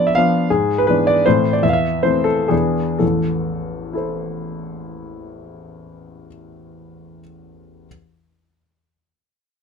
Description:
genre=classical, romantic triple-time dance for piano with dotted rhythms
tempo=109-176 BPM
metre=3/4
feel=rubato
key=A minor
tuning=A4 = 437 Hz
part: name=clear grand piano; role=solo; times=0.0-7.9 s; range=A1 to F5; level=-16 LUFS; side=left 1 dB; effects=none
room=little or no reverb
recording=close, detailed microphones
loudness=-16 LUFS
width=side -6 dB against mid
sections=0.0-3.0 A section; 3.0-5.8 B section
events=slowing down 0.0-3.0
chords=0.0 Bdim; 0.5 E7/G#; 1.3 Am; 1.6 Am/E; 2.5 E7; 3.0 Am

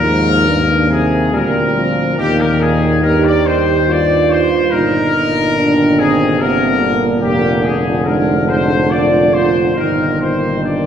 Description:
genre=classical, hymn-like piece for brass band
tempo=71 BPM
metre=3/4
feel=rubato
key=Eb major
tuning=A4 = 441 Hz
part: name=clear trumpet section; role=melody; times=0.0-10.9 s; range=G4 to D5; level=-17 LUFS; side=left 3 dB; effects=none
part: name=warm French horn section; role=second line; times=0.0-10.9 s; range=Bb3 to G4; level=-18 LUFS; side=right 4 dB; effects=none
part: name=warm euphonium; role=accompaniment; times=0.0-10.9 s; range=D3 to Bb3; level=-21 LUFS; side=left 2 dB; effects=none
part: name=warm trombone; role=accompaniment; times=0.0-10.9 s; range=G2 to C3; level=-21 LUFS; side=right 2 dB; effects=none
part: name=mellow tuba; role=bass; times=0.0-10.9 s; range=F1 to Eb2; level=-18 LUFS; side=left 1 dB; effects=none
room=wet concert hall reverb, RT60 1.9 s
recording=recorded in a church or concert hall, nothing above 10.4 kHz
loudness=-11 LUFS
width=side -8 dB against mid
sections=0.0-10.9 A section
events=none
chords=0.0 Bb/Eb; 2.2 Eb; 4.7 Eb/G; 7.2 Bb7/F; 9.8 Eb/G

